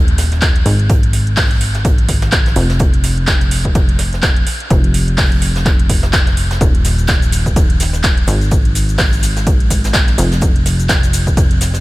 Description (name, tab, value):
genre	piano house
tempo	126 BPM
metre	4/4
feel	swing 57% on 16ths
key	unclear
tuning	A4 = 440 Hz
part	plucky analog bass	bass	0.0-11.8 s	Eb1 to Ab1	-16 LUFS	equal	sidechain pumping
part	house drum kit	drums	0.1-11.8 s	handclaps, hi-hat, shaker	-19 LUFS	equal	none
part	soft brush drum kit	drums	0.2-11.8 s	hi-hat, snare drum	-28 LUFS	right 2 dB	sidechain pumping on hats, high-pass filter on hats, high-pass filter on snare, high-pass filter on room
part	electronic kick drum	drums	0.4-11.5 s	none	-14 LUFS	equal	none
room	small room ambience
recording	none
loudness	-11 LUFS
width	side -18 dB against mid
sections	0.0-11.8 A section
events	none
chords	none